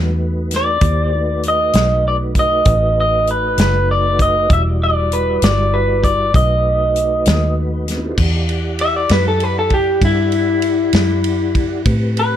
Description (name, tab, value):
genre	slow blues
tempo	65 BPM (dotted quarters)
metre	12/8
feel	straight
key	E minor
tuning	A4 = 440 Hz
part	mellow tonewheel organ	sustained chords	0.0-12.4 s	G3 to F#5	-24 LUFS	equal	slow rotary speaker, chorus vibrato
part	vintage muted fingered electric bass	bass	0.0-12.4 s	E1 to A2	-18 LUFS	equal	none
part	natural country drum kit	drums	0.5-12.3 s	crash cymbal, hi-hat, kick drum, ride cymbal, snare drum	-19 LUFS	equal	none
part	electric guitar through a small old amp	melody	0.6-12.4 s	E4 to E5	-16 LUFS	left 1 dB	none
room	light reverb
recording	none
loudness	-13 LUFS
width	side -10 dB against mid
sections	0.0-8.2 A section; 8.2-12.4 B section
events	clean electric guitar solo 8.2-12.4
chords	0.0 B7; 4.5 Em9; 6.3 B7; 8.2 Em9; 11.9 Am9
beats	| 0.82 1.74 2.66 3.58 | 4.50 5.42 6.34 7.26 | 8.18 9.10 10.02 10.94 | 11.86